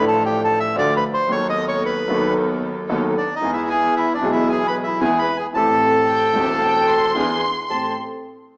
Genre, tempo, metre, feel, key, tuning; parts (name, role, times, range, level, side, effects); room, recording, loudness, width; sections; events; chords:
tango; 113 BPM; 4/4; rubato; A minor; A4 = 441 Hz
bandoneon; melody; 0.0-7.9 s; D4 to E6; -19 LUFS; equal
dark grand piano; accompaniment; 0.0-7.9 s; E1 to A4; -22 LUFS; equal
dark studio string section; stabs; 0.0-7.9 s; A3 to A4; -25 LUFS; equal
bright double bass; bass; 0.0-7.9 s; E1 to E2; -30 LUFS; equal
warm studio violin section; second line; 6.1-7.9 s; F5 to C6; -24 LUFS; equal
wet large studio reverb, RT60 1.3 s; band playing live in one room, small speaker sound; -16 LUFS; side -35 dB against mid
0.0-7.7 A section
0.0 Dm; 1.3 B7/D#; 3.4 E; 5.5 Am7; 7.2 E7; 7.7 Am7